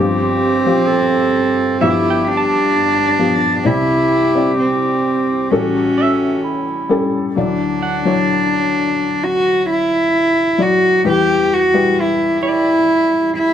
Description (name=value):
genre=acoustic folk-pop ballad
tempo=65 BPM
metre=4/4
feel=straight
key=D major from 7.4 s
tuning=A4 = 440 Hz
part: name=warm cello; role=melody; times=0.0-13.5 s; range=C4 to G4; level=-15 LUFS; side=right 1 dB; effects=none
part: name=warm clarinet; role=second line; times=0.0-7.3 s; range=E4 to A4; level=-20 LUFS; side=right 1 dB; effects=tape echo
part: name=felt-muted upright piano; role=accompaniment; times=0.0-13.5 s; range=G1 to D5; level=-19 LUFS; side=left 4 dB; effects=none
part: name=semi-hollow electric guitar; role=arpeggios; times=0.0-13.5 s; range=D5 to A5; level=-23 LUFS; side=right 5 dB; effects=tremolo
room=moderate studio reverb, RT60 0.5 s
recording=none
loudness=-13 LUFS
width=side -9 dB against mid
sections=0.0-7.4 A section; 7.4-13.5 A section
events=none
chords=0.0 G7sus4; 1.8 G7; 3.7 Cadd9; 5.5 A7; 7.4 Dadd9; 11.0 Em